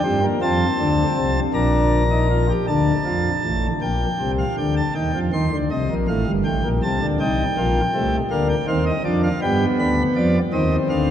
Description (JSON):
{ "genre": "classical, baroque-style 3-part fugue for pipe organ", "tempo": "53 BPM (dotted quarters)", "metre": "6/8", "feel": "straight", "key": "unclear", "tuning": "A4 = 445 Hz", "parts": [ { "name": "pipe organ, principal chorus", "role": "solo", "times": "0.0-11.1 s", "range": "G1 to C6", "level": "-18 LUFS", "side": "equal", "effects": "none" } ], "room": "wet cathedral reverb, RT60 5.9 s", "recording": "dark, warm production", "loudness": "-18 LUFS", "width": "side -10 dB against mid", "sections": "0.0-2.7 A section; 2.7-11.1 B section", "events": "none", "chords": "0.4 F; 1.5 Bb; 2.7 Dm; 3.8 Gm7/Bb; 5.0 Cm/Eb; 6.1 F; 7.2 F7; 8.3 Bb/D; 9.4 G7; 10.5 Cm" }